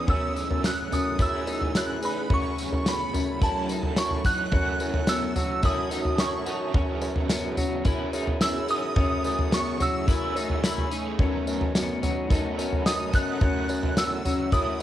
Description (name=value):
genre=dream pop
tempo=108 BPM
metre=4/4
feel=straight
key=F# dorian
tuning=A4 = 440 Hz
part: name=shimmering bell with halo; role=melody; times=0.0-14.8 s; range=A5 to F#6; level=-29 LUFS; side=right 2 dB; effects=ensemble chorus, cassette tape, analog delay
part: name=overdriven electric guitar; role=accompaniment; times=0.0-14.8 s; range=F#2 to A4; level=-34 LUFS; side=right 8 dB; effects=tremolo, ensemble chorus, cassette tape
part: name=ethereal airy pad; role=sustained chords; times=0.0-14.8 s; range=F#3 to C#6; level=-36 LUFS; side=equal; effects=ensemble chorus, built-in reverb, cassette tape
part: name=clean electric guitar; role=arpeggios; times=0.0-14.8 s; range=B3 to E4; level=-33 LUFS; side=left 9 dB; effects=lush chorus, cassette tape, analog delay
part: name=mellow bassoon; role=bass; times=0.0-14.8 s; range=E2 to F#3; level=-32 LUFS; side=equal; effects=none
part: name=loose indie drum kit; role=drums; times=0.1-14.8 s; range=kick drum, snare drum, tambourine, toms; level=-26 LUFS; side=equal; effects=none
room=light reverb, small room ambience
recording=home recording on cassette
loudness=-23 LUFS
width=side -12 dB against mid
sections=0.0-4.5 A section; 4.5-14.8 B section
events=none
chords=0.1 Amaj7/F#; 2.3 F#m7; 6.7 C#m7/F#; 9.0 Amaj7/F#; 11.2 B7/F#; 13.4 F#m7